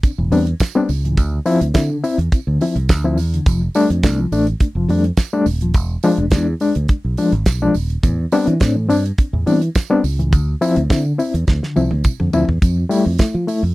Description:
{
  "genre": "disco",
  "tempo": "105 BPM",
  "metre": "4/4",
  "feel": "straight",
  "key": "A minor",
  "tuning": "A4 = 440 Hz",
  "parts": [
    { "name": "overdriven reed electric piano", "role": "accompaniment", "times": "0.0-13.6 s", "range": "A2 to E4", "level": "-17 LUFS", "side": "left 2 dB", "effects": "medium tremolo" },
    { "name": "damped 70s drum kit", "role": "drums", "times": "0.0-13.6 s", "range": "hi-hat, kick drum, snare drum, toms", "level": "-17 LUFS", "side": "right 1 dB", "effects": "none" },
    { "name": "tambourine", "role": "percussion", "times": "0.0-13.6 s", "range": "none", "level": "-36 LUFS", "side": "right 25 dB", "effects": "none" },
    { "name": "fingered electric bass", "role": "bass", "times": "0.2-13.7 s", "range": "D#1 to F3", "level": "-18 LUFS", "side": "right 1 dB", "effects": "none" }
  ],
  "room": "little or no reverb",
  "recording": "dry, close 1970s-style studio recording",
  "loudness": "-14 LUFS",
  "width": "side -18 dB against mid",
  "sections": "0.0-12.6 A section; 12.6-13.7 B section",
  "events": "drum fill 11.5-12.6",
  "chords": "0.0 Am11/E; 1.2 Dm7; 3.5 F69; 5.7 E7b9; 8.0 Am11/E; 10.3 Dm7; 12.6 Fmaj7"
}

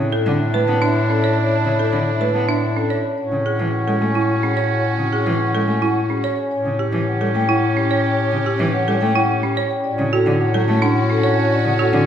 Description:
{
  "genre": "classical, minimalist pattern music",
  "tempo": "108 BPM",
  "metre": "3/4",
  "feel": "straight",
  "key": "A major",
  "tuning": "A4 = 440 Hz",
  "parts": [
    { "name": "vibraphone with soft mallets", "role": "melody", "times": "0.0-12.0 s", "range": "G4 to A5", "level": "-25 LUFS", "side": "left 6 dB", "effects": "none" },
    { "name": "warm oboe", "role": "second line", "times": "0.0-12.1 s", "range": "C#4 to D4", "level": "-26 LUFS", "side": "right 3 dB", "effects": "none" },
    { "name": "rich cello", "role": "accompaniment", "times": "0.0-12.0 s", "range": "C#3 to B3", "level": "-24 LUFS", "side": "right 1 dB", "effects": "none" },
    { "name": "rich studio string section", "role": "sustained chords", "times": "0.0-12.1 s", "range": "C#4 to G4", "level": "-27 LUFS", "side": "left 1 dB", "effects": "none" },
    { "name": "warm bass clarinet", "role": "bass", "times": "0.0-12.1 s", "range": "A2", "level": "-21 LUFS", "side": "left 1 dB", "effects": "none" },
    { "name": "folk marimba with hard mallets", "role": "arpeggios", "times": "0.1-12.0 s", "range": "C#4 to C#5", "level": "-22 LUFS", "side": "right 4 dB", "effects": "none" }
  ],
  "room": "wet recital hall reverb, RT60 1.6 s",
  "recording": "heard from further back in the room",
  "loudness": "-16 LUFS",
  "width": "side -9 dB against mid",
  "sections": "0.0-12.1 A section",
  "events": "none",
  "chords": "0.0 E7sus4/A; 3.2 A6; 6.5 A7; 9.8 Dmaj7/A"
}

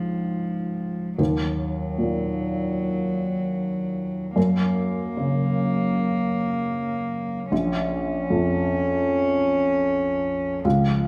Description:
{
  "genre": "neoclassical piano and strings",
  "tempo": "76 BPM",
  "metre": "4/4",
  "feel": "rubato",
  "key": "Bb minor",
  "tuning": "A4 = 440 Hz",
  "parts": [
    { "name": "warm cello", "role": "second line", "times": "0.0-11.1 s", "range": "F3 to Db4", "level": "-28 LUFS", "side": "equal", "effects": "none" },
    { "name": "felt-muted upright piano", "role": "accompaniment", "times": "0.0-11.1 s", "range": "Bb1 to Db3", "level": "-27 LUFS", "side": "equal", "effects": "none" }
  ],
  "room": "wet large studio reverb, RT60 1.2 s",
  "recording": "band playing live in one room",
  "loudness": "-24 LUFS",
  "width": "mono",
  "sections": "0.0-11.1 A section",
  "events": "none",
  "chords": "0.0 Db; 1.2 Ebm; 4.4 Gb; 7.5 Bbm"
}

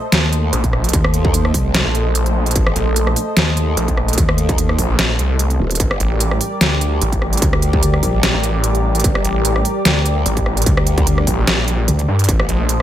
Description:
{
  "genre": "heavy wobble dubstep",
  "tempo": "148 BPM",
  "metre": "4/4",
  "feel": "swing 54% on 16ths, half-time",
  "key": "G minor",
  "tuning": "A4 = 439 Hz",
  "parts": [
    { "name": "lush unison pad", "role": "sustained chords", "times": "0.0-12.8 s", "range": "G3 to Eb5", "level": "-22 LUFS", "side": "equal", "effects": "chorus, sidechain pumping" },
    { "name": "growl bass", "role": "bass", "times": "0.1-12.5 s", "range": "Eb1 to Eb2", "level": "-17 LUFS", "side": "equal", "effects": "chorus, overdrive" },
    { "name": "dubstep drum kit", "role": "drums", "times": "0.1-12.8 s", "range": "hi-hat, rim click, snare drum", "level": "-18 LUFS", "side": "right 1 dB", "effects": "studio reverb" },
    { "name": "snarling distorted saw bass", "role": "bass", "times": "0.5-12.8 s", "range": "A1 to G2", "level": "-18 LUFS", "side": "equal", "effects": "distortion, overdrive" },
    { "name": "electronic kick drum", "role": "drums", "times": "0.6-12.4 s", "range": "none", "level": "-19 LUFS", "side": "equal", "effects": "distortion, studio reverb" }
  ],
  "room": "little or no reverb",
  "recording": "none",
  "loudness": "-14 LUFS",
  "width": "side -12 dB against mid",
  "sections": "0.0-12.8 A section",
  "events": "none",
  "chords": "0.0 Adim; 5.8 Gm; 12.3 Adim"
}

